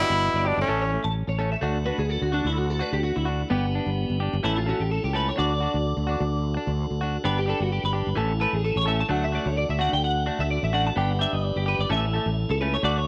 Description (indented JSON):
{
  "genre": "highlife",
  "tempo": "128 BPM",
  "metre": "4/4",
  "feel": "swing 54% on 16ths",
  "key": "D major",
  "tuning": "A4 = 439 Hz",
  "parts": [
    { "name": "bright trumpet", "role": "melody", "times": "0.0-1.0 s", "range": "C#4 to E4", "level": "-27 LUFS", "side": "equal", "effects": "tape echo" },
    { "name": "edgy tenor saxophone", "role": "second line", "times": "0.0-1.0 s", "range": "A2 to B2", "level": "-35 LUFS", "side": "equal", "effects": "none" },
    { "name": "clean electric guitar", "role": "accompaniment", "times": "0.0-13.0 s", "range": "E3 to A4", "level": "-33 LUFS", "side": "equal", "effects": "none" },
    { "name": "electric guitar at the edge of break-up", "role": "arpeggios", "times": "0.0-13.1 s", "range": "B3 to B5", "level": "-30 LUFS", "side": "equal", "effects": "ensemble chorus, tape echo" },
    { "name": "sustaining fretless electric bass", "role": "bass", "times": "0.1-13.1 s", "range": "G1 to D2", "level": "-28 LUFS", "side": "equal", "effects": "ensemble chorus" },
    { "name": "tonewheel organ", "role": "sustained chords", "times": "1.6-13.1 s", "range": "A3 to B4", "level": "-36 LUFS", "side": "equal", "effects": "overdrive, stopped rotary speaker" }
  ],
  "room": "moderate echo chamber reverb, RT60 1.4 s, small room ambience",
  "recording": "none",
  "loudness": "-25 LUFS",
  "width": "mono",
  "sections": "0.0-1.6 A section; 1.6-13.1 B section",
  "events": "clean electric guitar solo 1.6-13.1",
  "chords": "0.0 G; 0.7 A; 1.6 D; 3.5 G; 4.4 A; 5.4 D; 7.2 G; 8.2 A; 9.1 D; 11.0 G; 11.9 A"
}